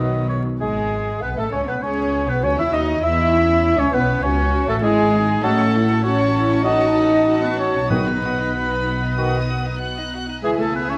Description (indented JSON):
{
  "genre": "quick classical-period movement for symphony orchestra",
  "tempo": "98 BPM",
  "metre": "4/4",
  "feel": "rubato",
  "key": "E major",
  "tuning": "A4 = 444 Hz",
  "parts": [
    { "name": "warm chamber violin section", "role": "melody", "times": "0.0-11.0 s", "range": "G#4 to F#6", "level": "-34 LUFS", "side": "equal", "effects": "none" },
    { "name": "mellow flute section", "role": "second line", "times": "0.0-11.0 s", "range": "G#4 to E5", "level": "-30 LUFS", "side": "equal", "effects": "none" },
    { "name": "warm chamber violin section", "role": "second line", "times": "0.0-11.0 s", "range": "G#3 to A5", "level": "-33 LUFS", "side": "equal", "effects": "none" },
    { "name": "warm clarinet", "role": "second line", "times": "0.0-10.7 s", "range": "B3 to E5", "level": "-32 LUFS", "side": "equal", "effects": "none" },
    { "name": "warm oboe", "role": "second line", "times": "0.0-11.0 s", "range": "G#4 to E5", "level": "-27 LUFS", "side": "equal", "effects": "none" },
    { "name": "dark bassoon", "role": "accompaniment", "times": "0.0-10.7 s", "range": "D#3 to E4", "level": "-28 LUFS", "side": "equal", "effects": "none" },
    { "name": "dark chamber viola section", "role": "accompaniment", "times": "0.0-11.0 s", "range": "D#3 to G#4", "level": "-30 LUFS", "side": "equal", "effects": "none" },
    { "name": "mellow French horn section", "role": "sustained chords", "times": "0.0-11.0 s", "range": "F#3 to E4", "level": "-28 LUFS", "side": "equal", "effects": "none" },
    { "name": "clear chamber double bass section", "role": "bass", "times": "0.0-11.0 s", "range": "G#1 to E2", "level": "-26 LUFS", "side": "equal", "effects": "none" },
    { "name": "warm chamber cello section", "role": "bass", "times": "0.0-11.0 s", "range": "B2 to E4", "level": "-28 LUFS", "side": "equal", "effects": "none" },
    { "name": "timpani", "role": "percussion", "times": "7.9-8.8 s", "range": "B2", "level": "-28 LUFS", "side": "equal", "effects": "none" }
  ],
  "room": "moderate concert hall reverb, RT60 1.8 s",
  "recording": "vinyl crackle",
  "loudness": "-19 LUFS",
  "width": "mono",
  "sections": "0.6-11.0 A section",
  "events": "none",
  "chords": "0.0 B; 0.6 E/G#; 5.4 F#m/A; 7.9 B; 10.4 C#m7",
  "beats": "| 0.61 1.23 1.83 2.44 | 3.04 3.64 4.24 4.84 | 5.44 6.04 6.65 7.27 | 7.90 8.54 9.17 9.81 | 10.44"
}